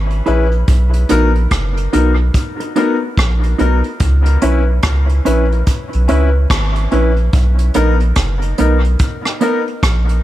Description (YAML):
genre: dub reggae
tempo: 72 BPM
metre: 4/4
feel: swing 62% on 16ths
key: unclear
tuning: A4 = 437 Hz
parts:
  - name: soft dub sub bass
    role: bass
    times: 0.0-10.2 s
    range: F#1 to C#2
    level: -13 LUFS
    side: equal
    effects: none
  - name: vintage brush drum kit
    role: drums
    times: 0.1-10.2 s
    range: hi-hat, kick drum, rim click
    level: -18 LUFS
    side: equal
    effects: none
  - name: mellow electric guitar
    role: accompaniment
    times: 0.3-9.6 s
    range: B3 to B4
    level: -21 LUFS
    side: right 4 dB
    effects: spring reverb, dub echo
  - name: warm grand piano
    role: stabs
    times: 0.3-9.6 s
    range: B3 to B4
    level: -20 LUFS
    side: left 6 dB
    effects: dub echo
room: little or no reverb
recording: echo-heavy mix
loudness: -12 LUFS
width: side -14 dB against mid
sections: 0.0-10.2 A section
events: none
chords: 0.0 C#m7; 0.7 Bmaj7; 4.0 C#m7; 7.3 Bmaj7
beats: | 0.68 1.51 2.34 3.17 | 4.01 4.84 5.67 6.50 | 7.34 8.17 9.00 9.84